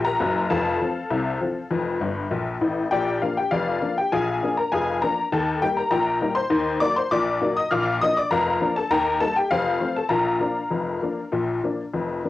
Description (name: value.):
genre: ragtime piano.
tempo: 100 BPM.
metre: 2/4.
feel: straight.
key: Bb major.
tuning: A4 = 440 Hz.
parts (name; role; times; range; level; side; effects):
honky-tonk upright piano; solo; 0.0-12.3 s; F1 to F6; -21 LUFS; left 2 dB; none.
room: wet booth ambience, RT60 0.2 s.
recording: home recording on cassette.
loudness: -21 LUFS.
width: side -15 dB against mid.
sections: 0.0-12.3 A section.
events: honky-tonk piano fill 2.0-2.9.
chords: 0.0 N.C.; 0.5 F; 2.9 Bb; 4.1 Bb7; 5.3 Eb; 6.5 Ebm; 7.7 Bb; 8.9 Eb; 9.5 F; 10.1 Bb.